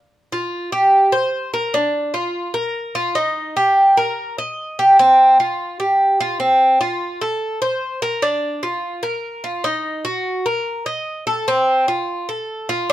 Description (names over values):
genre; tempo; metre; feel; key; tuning
latin; 148 BPM; 4/4; straight; unclear; A4 = 440 Hz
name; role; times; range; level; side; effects
Cuban tres; solo; 0.3-12.9 s; C4 to Eb5; -16 LUFS; equal; none
room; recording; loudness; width
light reverb; close, detailed microphones; -16 LUFS; side -14 dB against mid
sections
0.1-12.9 A section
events
none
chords
none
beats
| 0.12 0.52 0.93 1.33 | 1.74 2.15 2.55 2.96 | 3.36 3.77 4.17 4.58 | 4.99 5.39 5.80 6.20 | 6.61 7.01 7.42 7.82 | 8.23 8.63 9.04 9.45 | 9.85 10.26 10.66 11.07 | 11.47 11.88 12.29 12.69